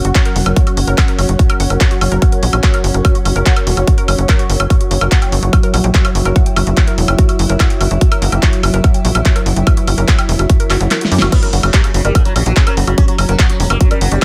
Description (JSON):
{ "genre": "psychedelic trance", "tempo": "145 BPM", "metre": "4/4", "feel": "straight", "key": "unclear", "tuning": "A4 = 440 Hz", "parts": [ { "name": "evolving wavetable pad", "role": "sustained chords", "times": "0.0-14.2 s", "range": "F#3 to E4", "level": "-25 LUFS", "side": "equal", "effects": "chorus, built-in reverb, sidechain pumping" }, { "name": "woody wave-folded pluck", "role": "riff", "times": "0.0-14.2 s", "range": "F#4 to G5", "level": "-26 LUFS", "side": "equal", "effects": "chorus, sidechain pumping, dub echo" }, { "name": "tight sequencer bass", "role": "bass", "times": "0.0-14.2 s", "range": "E1 to F#2", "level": "-17 LUFS", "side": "equal", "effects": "none" }, { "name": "big-room dance drum kit", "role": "drums", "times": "0.0-14.2 s", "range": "crash cymbal, handclaps, hi-hat, snare drum, woodblock", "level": "-21 LUFS", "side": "equal", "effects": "none" }, { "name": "airy breathy pad", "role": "texture", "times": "0.0-11.3 s", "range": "F#4 to F#5", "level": "-27 LUFS", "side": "equal", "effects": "chorus, sidechain pumping" }, { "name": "electronic kick drum", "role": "drums", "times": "0.2-14.2 s", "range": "none", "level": "-14 LUFS", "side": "equal", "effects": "none" }, { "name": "resonant blip pluck", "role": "second line", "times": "4.9-13.8 s", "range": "E3 to A#3", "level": "-37 LUFS", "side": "equal", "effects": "none" }, { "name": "sitar", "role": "melody", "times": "11.3-14.2 s", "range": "C#3 to C#4", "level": "-25 LUFS", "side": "equal", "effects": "phaser, vintage 12-bit sampler grit, sidechain pumping, dub echo" } ], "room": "digital ambience", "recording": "none", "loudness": "-13 LUFS", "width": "mono", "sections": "0.0-11.3 A section; 11.3-14.2 B section", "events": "kick drops out 10.9-11.3; drum fill 10.9-11.3; band accent 11.2; drop 11.3-14.2", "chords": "0.0 F#5" }